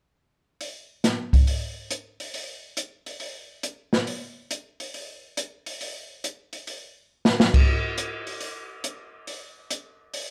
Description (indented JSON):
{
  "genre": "jazz",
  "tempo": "138 BPM",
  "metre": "4/4",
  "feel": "swing 67% on 8ths",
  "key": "none",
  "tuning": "none",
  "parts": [
    { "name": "open jazz drum kit", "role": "drums", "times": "0.6-10.3 s", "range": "crash cymbal, hi-hat, kick drum, snare drum", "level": "-26 LUFS", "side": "equal", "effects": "none" }
  ],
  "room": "little or no reverb",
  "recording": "close, detailed microphones",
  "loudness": "-27 LUFS",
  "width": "mono",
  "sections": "0.6-10.3 A section",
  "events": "drum fill 7.1-7.5",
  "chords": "none"
}